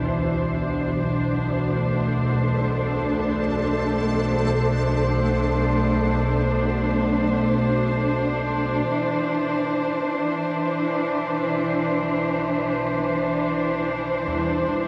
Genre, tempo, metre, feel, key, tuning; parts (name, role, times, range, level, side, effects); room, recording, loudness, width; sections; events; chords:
dark ambient drone; free time; A4 = 440 Hz
muted studio cello section; sustained chords; 0.0-14.9 s; E3 to C5; -25 LUFS; equal
old church bells; arpeggios; 0.0-4.4, 14.3-14.9 s; D3 to E4; -34 LUFS; equal; diffuse ambient delay
organ-like drone; drone; 0.0-14.9 s; B1 to B2; -28 LUFS; equal; ensemble chorus, built-in reverb, phaser
flickering grainy texture; texture; 1.8-8.9 s; A4; -33 LUFS; equal; built-in reverb
wet lush hall reverb, RT60 2.9 s; dreamy mix soaked in reverb; -23 LUFS; mono
0.0-8.9 A section; 8.9-14.9 B section
0.0 Dsus2; 1.0 Bm7; 8.9 Dsus2